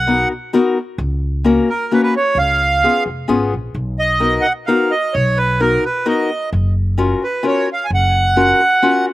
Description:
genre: musette waltz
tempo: 130 BPM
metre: 3/4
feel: straight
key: F# major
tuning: A4 = 440 Hz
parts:
  - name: accordion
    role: melody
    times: 0.0-9.1 s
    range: A#4 to G#5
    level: -15 LUFS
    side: right 2 dB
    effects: slapback echo
  - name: upright bass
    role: bass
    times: 0.0-8.5 s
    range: E#1 to C#2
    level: -19 LUFS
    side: equal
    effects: none
  - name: fingerpicked acoustic archtop guitar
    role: accompaniment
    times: 0.1-9.1 s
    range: A#3 to A#4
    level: -16 LUFS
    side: left 3 dB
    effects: none
room: little or no reverb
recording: recorded outdoors, with no room sound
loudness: -14 LUFS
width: side -16 dB against mid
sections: 0.0-9.1 A section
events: none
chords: 0.0 Bmaj7; 1.0 F#/C#; 2.4 C#7; 3.8 Bmaj7; 6.5 F#maj7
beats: 0.09 0.54 | 0.99 1.45 1.90 | 2.36 2.83 3.29 | 3.76 4.22 4.68 | 5.15 5.61 6.06 | 6.52 6.98 7.44 | 7.90 8.36 8.83

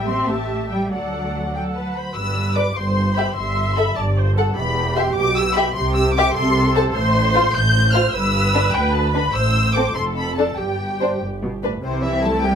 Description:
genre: quick classical-period movement for string orchestra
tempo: 99 BPM (dotted quarters)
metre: 6/8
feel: straight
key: G major, C major from 7.0 s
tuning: A4 = 440 Hz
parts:
  - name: muted symphonic violin section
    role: melody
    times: 0.0-12.6 s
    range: C5 to G6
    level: -23 LUFS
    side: left 2 dB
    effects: none
  - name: muted symphonic violin section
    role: second line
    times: 0.0-12.6 s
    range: C4 to C6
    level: -22 LUFS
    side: left 2 dB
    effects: none
  - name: muted symphonic viola section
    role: accompaniment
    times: 0.0-12.6 s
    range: C3 to E5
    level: -25 LUFS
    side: right 2 dB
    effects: none
  - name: muted symphonic cello section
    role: bass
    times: 0.0-12.6 s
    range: D2 to C4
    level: -24 LUFS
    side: right 1 dB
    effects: none
  - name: muted symphonic double bass section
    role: bass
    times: 0.0-12.6 s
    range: E1 to D2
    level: -23 LUFS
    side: right 1 dB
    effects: none
room: moderate large studio reverb, RT60 0.8 s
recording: none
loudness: -17 LUFS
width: side -8 dB against mid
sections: 0.0-2.2 A section; 2.2-11.8 B section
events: none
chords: 0.3 A5; 0.9 D; 2.2 G; 2.8 C5/G; 3.4 Am7/G (rootless); 4.0 Gsus24; 4.6 Em; 5.8 C; 6.4 Am/C; 7.0 F/A; 8.1 G; 9.3 Am; 10.0 Dm/F (rootless); 10.6 N.C.; 11.2 G; 11.8 C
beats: 0.29 | 0.91 1.54 | 2.16 2.76 | 3.37 3.97 | 4.57 5.17 | 5.77 6.36 | 6.95 7.55 | 8.14 8.74 | 9.34 9.95 | 10.58 11.21 | 11.84 12.44

